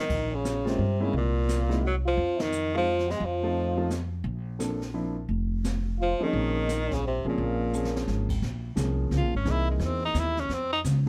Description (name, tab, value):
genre	jazz, small-group swing and bop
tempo	173 BPM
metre	3/4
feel	swing 62% on 8ths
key	Bb minor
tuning	A4 = 440 Hz
part	bright tenor saxophone	melody	0.0-3.9, 6.0-10.8 s	Bb2 to F4	-32 LUFS	equal	none
part	trombone with cup mute	second line	0.0-3.9, 6.0-8.0 s	Bb3 to Ab4	-36 LUFS	equal	none
part	upright bass	bass	0.1-11.1 s	F1 to G2	-31 LUFS	equal	none
part	jazz brush drum kit	drums	0.1-11.1 s	brushed snare drum, crash cymbal, hi-hat, kick drum, ride cymbal, snare drum	-39 LUFS	equal	none
part	warm concert grand piano	accompaniment	0.6-11.1 s	E3 to A4	-34 LUFS	equal	none
room	light reverb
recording	none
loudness	-28 LUFS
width	mono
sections	0.1-8.4 A section; 8.4-11.1 B section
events	band accent 2.4; drum fill 7.7-8.1; tenor saxophone solo 8.4-11.1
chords	0.1 Bbm9; 1.1 C7(no3); 2.2 Fm7; 3.2 F7; 4.3 Bbmaj9; 5.3 Fm; 6.3 Bbm9; 9.5 C7alt; 10.5 F5